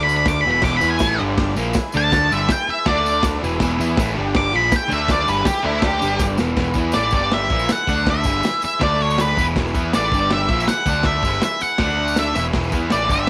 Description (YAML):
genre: garage rock duo or trio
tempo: 161 BPM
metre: 4/4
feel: straight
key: unclear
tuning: A4 = 441 Hz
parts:
  - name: octave-fuzz lead guitar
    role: melody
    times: 0.0-13.3 s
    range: E4 to D6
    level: -22 LUFS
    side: equal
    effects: distortion
  - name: overdriven combo organ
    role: sustained chords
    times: 0.0-13.3 s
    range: D4 to D5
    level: -32 LUFS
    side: equal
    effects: none
  - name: crunchy overdriven guitar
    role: riff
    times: 0.0-13.3 s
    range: E2 to E4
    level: -25 LUFS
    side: equal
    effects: none
  - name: growling picked electric bass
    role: bass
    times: 0.0-13.3 s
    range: E1 to E2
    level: -28 LUFS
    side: equal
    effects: overdrive
  - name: tambourine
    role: percussion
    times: 0.1-13.2 s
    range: none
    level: -40 LUFS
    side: equal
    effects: none
  - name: crunchy breakbeat drum kit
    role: drums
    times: 0.3-13.3 s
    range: crash cymbal, hi-hat, kick drum, snare drum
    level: -25 LUFS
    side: equal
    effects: none
room: light reverb, small room ambience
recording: none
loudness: -19 LUFS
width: mono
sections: 0.0-6.6 A section; 6.6-13.3 B section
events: lead electric guitar solo 0.0-6.6; drum fill 6.2-6.6, 12.4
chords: 0.5 E; 1.2 G5; 1.6 E; 1.9 D5; 2.3 E; 2.9 D5; 3.4 E; 4.2 G5; 4.5 E; 4.9 D5; 5.3 E; 5.6 D5; 6.0 G5; 6.4 E5; 6.6 E; 7.1 G5; 7.5 E; 7.9 D5; 8.2 E; 8.8 D5; 9.4 E; 10.1 G5; 10.5 E; 10.9 D5; 11.2 E; 11.8 D5; 12.4 E